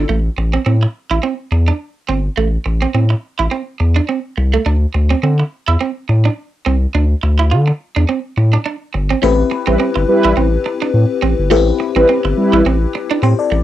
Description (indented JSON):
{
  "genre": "funk",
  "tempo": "105 BPM",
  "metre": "4/4",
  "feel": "swing 56% on 16ths",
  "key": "A minor",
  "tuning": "A4 = 443 Hz",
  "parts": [
    { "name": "FM electric piano with soft pad layer", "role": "accompaniment", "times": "0.0, 9.2-13.6 s", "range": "B3 to D5", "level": "-17 LUFS", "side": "left 8 dB", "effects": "chorus, phaser, cassette tape, plate reverb" },
    { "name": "electric guitar at the edge of break-up", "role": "riff", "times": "0.0-13.5 s", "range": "A3 to F4", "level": "-19 LUFS", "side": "right 7 dB", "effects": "analog chorus, cassette tape" },
    { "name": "saturated sub bass", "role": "bass", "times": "0.0-13.6 s", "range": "G1 to D3", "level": "-14 LUFS", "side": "equal", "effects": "none" },
    { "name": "mellow synth brass", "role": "second line", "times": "9.7-12.6 s", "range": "G3 to B4", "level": "-14 LUFS", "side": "right 1 dB", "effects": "chorus, cassette tape, plate reverb" }
  ],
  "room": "light reverb",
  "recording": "home recording on cassette",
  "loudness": "-13 LUFS",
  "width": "side -13 dB against mid",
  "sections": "0.1-9.2 A section; 9.2-13.6 B section",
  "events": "none",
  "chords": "0.1 Am; 4.7 D7(no3); 9.2 Am9"
}